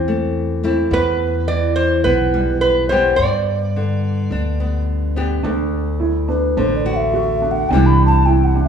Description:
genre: acoustic folk duo or small band.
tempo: 106 BPM.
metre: 4/4.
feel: straight.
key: D mixolydian.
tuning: A4 = 445 Hz.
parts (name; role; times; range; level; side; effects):
nylon-string guitar; accompaniment; 0.0-8.7 s; D2 to G4; -21 LUFS; left 2 dB; none.
upright bass; bass; 0.0-8.7 s; A1 to G2; -19 LUFS; equal; none.
lap resonator guitar; second line; 0.9-4.8 s; B4 to D5; -18 LUFS; right 1 dB; none.
dark upright piano; arpeggios; 5.4-8.7 s; D4 to F#4; -21 LUFS; right 7 dB; none.
mellow hollow alto ocarina; melody; 6.3-8.7 s; B4 to B5; -19 LUFS; left 1 dB; none.
room: moderate recital hall reverb, RT60 1.4 s.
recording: recorded in a church or concert hall, small room ambience.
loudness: -15 LUFS.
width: side -7 dB against mid.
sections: 0.0-5.4 A section; 5.4-8.7 B section.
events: resonator guitar played with a steel bar solo 0.0-5.4; ocarina solo 5.4-8.7.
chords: 0.0 Am; 0.9 Em; 3.2 G; 5.4 D; 7.7 Cadd9.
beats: 0.35 | 0.91 1.48 2.04 2.61 | 3.17 3.74 4.30 4.87 | 5.44 6.00 6.57 7.14 | 7.70 8.27.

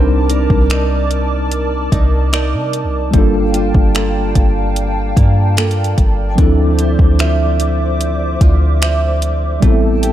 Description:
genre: contemporary R&B.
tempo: 74 BPM.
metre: 4/4.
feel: straight.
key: D minor.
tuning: A4 = 440 Hz.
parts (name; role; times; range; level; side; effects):
mellow tine electric piano; accompaniment; 0.0-10.1 s; F3 to Bb4; -19 LUFS; left 1 dB; medium stereo tremolo.
hollow soft pad; sustained chords; 0.0-10.1 s; A4 to D6; -23 LUFS; equal; ensemble chorus.
picked old ladder-braced acoustic guitar; arpeggios; 0.0-10.1 s; G3 to E5; -23 LUFS; right 6 dB; digital delay.
soft 808-style bass; bass; 0.0-10.1 s; G1 to C3; -15 LUFS; equal; none.
smooth R&B drum kit; drums; 0.3-10.1 s; finger snaps, hi-hat, kick drum; -15 LUFS; equal; overdrive.
room: little or no reverb.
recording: dark, warm production.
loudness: -12 LUFS.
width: side -12 dB against mid.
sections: 0.0-10.1 A section.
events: none.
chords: 0.0 Cm9; 3.1 Gm9; 6.4 Dm9; 9.6 Am9.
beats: 0.70 1.52 2.33 | 3.14 3.95 4.76 5.57 | 6.38 7.19 8.00 8.81 | 9.62.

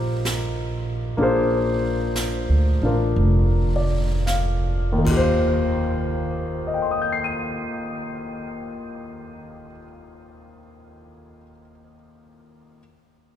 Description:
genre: jazz ballad.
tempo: 49-66 BPM.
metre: 4/4.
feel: swing 68% on 8ths.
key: Eb major.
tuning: A4 = 440 Hz.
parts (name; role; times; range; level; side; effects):
warm grand piano; accompaniment; 0.0-12.8 s; Eb2 to Eb7; -24 LUFS; left 2 dB; none.
upright bass; bass; 0.0-9.7 s; F1 to Eb2; -22 LUFS; right 1 dB; none.
jazz brush drum kit; drums; 0.3-5.2 s; brushed snare drum, crash cymbal, hi-hat, kick drum, snare drum; -32 LUFS; right 2 dB; none.
room: wet cathedral reverb, RT60 7.2 s.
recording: recorded in a church or concert hall.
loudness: -20 LUFS.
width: side -10 dB against mid.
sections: 0.0-1.2 A section; 1.2-5.4 B section; 5.4-10.3 C section.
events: slowing down 0.0-5.4.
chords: 0.0 Eb69; 1.2 Bb7; 4.8 Eb69.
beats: 0.25 | 1.19 2.16 3.18 4.27 | 5.44 6.65 7.86 9.07.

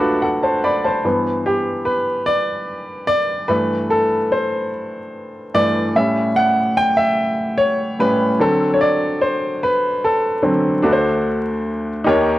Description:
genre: gospel.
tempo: 49 BPM (dotted quarters).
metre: 6/8.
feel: straight.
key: G major.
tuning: A4 = 443 Hz.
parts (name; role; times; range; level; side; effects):
clear baby grand piano; solo; 0.0-12.4 s; D2 to B5; -16 LUFS; equal; cassette tape.
room: moderate spring reverb, RT60 1.1 s, small room ambience.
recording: home recording on cassette, vinyl crackle.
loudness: -16 LUFS.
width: side -15 dB against mid.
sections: 0.0-1.0 A section; 1.0-10.8 B section; 10.8-12.4 C section.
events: grand piano solo 1.0-10.8.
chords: 0.0 D7; 1.0 G6; 6.0 A7; 8.4 D7.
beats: | 1.04 2.27 | 3.50 4.72 | 5.95 7.18 | 8.40 9.62 | 10.85 12.07.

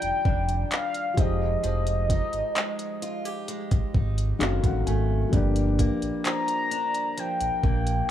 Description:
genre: contemporary R&B.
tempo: 65 BPM.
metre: 4/4.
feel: straight.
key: F dorian.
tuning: A4 = 440 Hz.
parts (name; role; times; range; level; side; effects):
mellow horn-like synth lead; melody; 0.0-8.1 s; Eb5 to Bb5; -28 LUFS; left 2 dB; chorus, tape echo.
felt-muted upright piano; accompaniment; 0.0-8.1 s; D#3 to Ab5; -31 LUFS; left 5 dB; none.
picked old ladder-braced acoustic guitar; arpeggios; 0.0-8.1 s; F#2 to G4; -34 LUFS; right 3 dB; tape echo.
sub bass with octave; bass; 0.0-8.0 s; F1 to Bb1; -26 LUFS; right 1 dB; none.
smooth R&B drum kit; drums; 0.0-8.1 s; handclaps, hi-hat, kick drum; -26 LUFS; equal; none.
room: digital ambience.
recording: none.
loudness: -23 LUFS.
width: side -11 dB against mid.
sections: 0.0-8.1 A section.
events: felt piano fill 3.9-5.3.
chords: 0.0 Ebmaj9; 1.2 Fm9; 4.4 F#dim7; 5.3 Gm7.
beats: 0.71 | 1.64 2.56 3.48 4.41 | 5.33 6.25 7.17 8.10.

